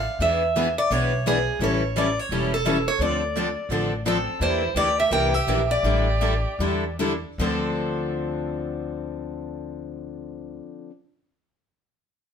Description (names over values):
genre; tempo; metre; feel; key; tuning
acoustic string swing (jazz manouche); 145-171 BPM; 4/4; swing 61% on 8ths; D minor; A4 = 440 Hz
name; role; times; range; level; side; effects
picked steel-string acoustic guitar; melody; 0.0-7.0 s; G#4 to G5; -24 LUFS; right 1 dB; none
upright bass; bass; 0.0-10.6 s; E1 to E2; -28 LUFS; equal; none
picked steel-string acoustic guitar; accompaniment; 0.2-10.9 s; D3 to A4; -27 LUFS; left 4 dB; none
picked steel-string acoustic guitar; accompaniment; 0.2-10.9 s; D3 to B4; -31 LUFS; right 5 dB; none
warm violin; second line; 4.1-6.9 s; C4 to Bb4; -31 LUFS; right 5 dB; none
room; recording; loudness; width
moderate studio reverb, RT60 0.7 s; band playing live in one room; -21 LUFS; side -7 dB against mid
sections
0.0-4.4 A section; 4.4-7.4 B section; 7.4-10.7 C section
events
slowing down 4.4-7.4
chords
0.2 E7; 1.6 A7; 3.0 Dm7; 4.4 Em7b5; 5.8 A7sus4; 7.4 Dm7